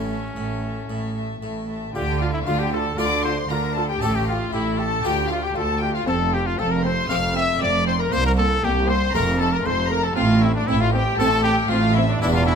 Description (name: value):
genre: classical, baroque-style concerto movement with solo episodes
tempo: 117 BPM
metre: 4/4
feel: straight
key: D minor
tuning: A4 = 440 Hz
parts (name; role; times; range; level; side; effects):
- clear trumpet; melody; 0.0-12.6 s; C#4 to F5; -26 LUFS; left 2 dB; none
- rich chamber violin section; melody; 0.0-12.6 s; D5 to F6; -28 LUFS; left 2 dB; none
- dark chamber violin section; second line; 0.0-12.6 s; D4 to F5; -27 LUFS; left 5 dB; none
- dark chamber viola section; accompaniment; 0.0-12.6 s; A3 to G4; -30 LUFS; right 2 dB; none
- harpsichord; accompaniment; 0.0-12.6 s; C2 to G4; -32 LUFS; left 1 dB; none
- rich chamber double bass section; bass; 0.0-12.6 s; E1 to D2; -25 LUFS; right 3 dB; none
- warm chamber cello section; bass; 0.0-12.6 s; C2 to D3; -25 LUFS; right 2 dB; none
room: moderate recital hall reverb, RT60 1.7 s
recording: none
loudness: -19 LUFS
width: side -6 dB against mid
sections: 0.0-2.0 A section; 2.0-12.6 B section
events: none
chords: 0.0 A; 2.0 Dm; 4.0 A7; 5.0 Dm; 6.1 F; 8.1 C7; 9.1 F; 10.2 Am